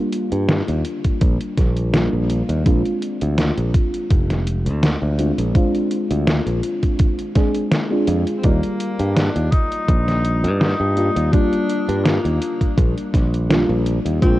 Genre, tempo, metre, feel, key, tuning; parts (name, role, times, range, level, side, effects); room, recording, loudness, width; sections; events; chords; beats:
vaporwave; 83 BPM; 4/4; swing 54% on 16ths; Eb major; A4 = 440 Hz
mellow FM electric piano; accompaniment; 0.0-14.4 s; G3 to D5; -22 LUFS; left 1 dB; lush chorus, analog delay
detuned 8-bit digital drum machine; drums; 0.1-14.4 s; hi-hat, snare drum; -22 LUFS; equal
modern bright fingered electric bass; bass; 0.3-14.4 s; F1 to G2; -19 LUFS; equal
electronic kick drum; drums; 1.0-14.4 s; -17 LUFS; equal
warm tenor saxophone; melody; 8.4-14.4 s; Bb3 to Eb4; -26 LUFS; left 1 dB; vintage 12-bit sampler grit, tape echo
little or no reverb; worn, warbling old tape, cassette tape, warbly pitch drift; -16 LUFS; side -16 dB against mid
0.0-14.4 A section
0.0 Ebmaj7 (rootless); 2.7 Bb7 (rootless); 8.4 Ebmaj7
0.49 1.21 1.94 | 2.66 3.38 4.11 4.83 | 5.55 6.27 7.00 7.72 | 8.44 9.16 9.89 10.61 | 11.33 12.06 12.78 13.50 | 14.22